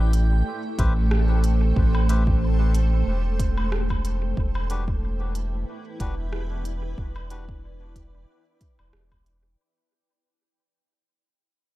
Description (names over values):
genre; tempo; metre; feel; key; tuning
ambient dub; 92 BPM; 4/4; swing 56% on 16ths; unclear; A4 = 440 Hz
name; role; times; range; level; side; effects
granular cloud pad; sustained chords; 0.0-9.6 s; A3 to G5; -31 LUFS; right 2 dB; built-in reverb
soft dub sub bass; bass; 0.0-9.6 s; E1 to A1; -22 LUFS; equal; none
organic electronic drum kit; drums; 0.1-9.4 s; hi-hat, rim click, woodblock; -36 LUFS; right 1 dB; overdrive, dub echo
melodica; stabs; 0.8-7.5 s; D4 to E5; -39 LUFS; left 3 dB; dub echo
electronic kick drum; drums; 0.8-9.2 s; none; -27 LUFS; equal; overdrive
room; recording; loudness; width
little or no reverb; dark, warm production; -21 LUFS; side -17 dB against mid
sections
0.0-9.6 A section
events
fade-out 2.6-9.6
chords
0.0 Am7; 4.4 Em7